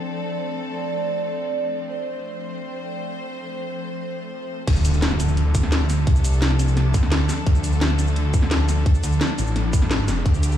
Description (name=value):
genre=dark technical drum and bass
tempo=172 BPM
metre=4/4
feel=straight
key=D minor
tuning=A4 = 439 Hz
part: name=clear studio string section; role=sustained chords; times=0.0-10.6 s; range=F3 to C5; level=-29 LUFS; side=left 2 dB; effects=sidechain pumping
part: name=warbly tape-like pad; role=texture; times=0.0-3.3 s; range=D4 to G5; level=-29 LUFS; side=right 4 dB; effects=chorus, built-in reverb, sidechain pumping
part: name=snarling distorted saw bass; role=bass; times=4.7-10.6 s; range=A1 to D2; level=-20 LUFS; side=equal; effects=distortion, overdrive, sidechain pumping
part: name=drum and bass drum kit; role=drums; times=4.7-10.6 s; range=crash cymbal, hi-hat, shaker, snare drum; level=-26 LUFS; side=left 1 dB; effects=none
part: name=electronic kick drum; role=drums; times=4.7-10.3 s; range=none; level=-18 LUFS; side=equal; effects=none
part: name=impact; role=sound effects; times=4.7-6.1 s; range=none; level=-28 LUFS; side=right 1 dB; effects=none
room=little or no reverb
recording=played on a big sound system in a bare room, large studio reverb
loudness=-19 LUFS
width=side -10 dB against mid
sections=0.0-4.7 A section; 4.7-10.6 B section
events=drop 4.7-10.6; impact 4.7-6.1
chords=0.0 Dm